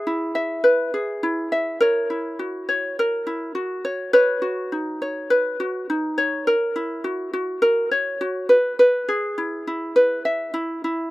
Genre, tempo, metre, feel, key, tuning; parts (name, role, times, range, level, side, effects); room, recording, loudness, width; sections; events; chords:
pop; 103 BPM; 4/4; swing 55% on 16ths; F# mixolydian; A4 = 440 Hz
ukulele; solo; 0.0-11.1 s; D#4 to E5; -20 LUFS; equal
little or no reverb; recorded outdoors, with no room sound; -20 LUFS; side -17 dB against mid
0.0-6.5 A section; 6.5-11.1 B section
0.0 E; 1.8 F#7; 4.1 Badd9; 6.5 F#7; 8.5 E